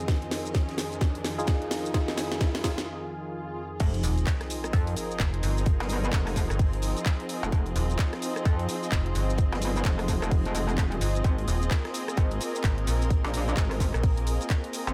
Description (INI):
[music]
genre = bass house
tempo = 129 BPM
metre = 4/4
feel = swing 60% on 16ths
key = F minor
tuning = A4 = 440 Hz
[part]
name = sweeping resonant pad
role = sustained chords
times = 0.0-14.9 s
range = F2 to Ab4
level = -39 LUFS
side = equal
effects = chorus, sidechain pumping
[part]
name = garage drum kit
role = drums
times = 0.0-14.9 s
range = crash cymbal, handclaps, hi-hat, rim click, shaker, snare drum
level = -37 LUFS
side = equal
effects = none
[part]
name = riser, swell and sub drop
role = sound effects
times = 0.1-5.7 s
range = none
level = -40 LUFS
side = equal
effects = none
[part]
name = rich studio string section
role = texture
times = 0.0-14.9 s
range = C4 to Eb5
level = -38 LUFS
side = equal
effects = sidechain pumping
[part]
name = electronic kick drum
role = drums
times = 0.1-14.6 s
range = none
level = -27 LUFS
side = equal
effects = none
[part]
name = warm soul drum kit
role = drums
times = 0.1-14.9 s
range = hi-hat, snare drum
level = -50 LUFS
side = equal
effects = none
[part]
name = percussive organ stab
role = stabs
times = 1.4-2.7 s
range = Eb4 to Ab4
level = -36 LUFS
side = equal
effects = chorus, sidechain pumping, tape echo
[part]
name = metallic wobble bass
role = bass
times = 3.8-14.9 s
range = F1 to F2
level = -31 LUFS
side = equal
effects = chorus, tube saturation, sidechain pumping
[part]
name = metallic FM bass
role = bass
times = 4.0-14.4 s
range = Eb1 to Bb1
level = -30 LUFS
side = equal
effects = overdrive, sidechain pumping
[sound]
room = little or no reverb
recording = none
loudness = -27 LUFS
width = mono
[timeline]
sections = 0.0-3.8 A section; 3.8-14.9 B section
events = build-up 0.0-3.8; drum fill 0.0-2.9; riser 0.1-2.9; break 2.9-3.8; swell 2.9-3.8; drop 3.8-14.9; impact 3.8-5.7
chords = 0.0 Fm7; 11.2 Abadd9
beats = | 0.08 0.55 1.01 1.48 | 1.94 2.41 2.87 3.34 | 3.80 4.27 4.73 5.20 | 5.66 6.13 6.59 7.06 | 7.52 7.99 8.45 8.92 | 9.38 9.85 10.31 10.78 | 11.24 11.71 12.18 12.64 | 13.11 13.57 14.04 14.50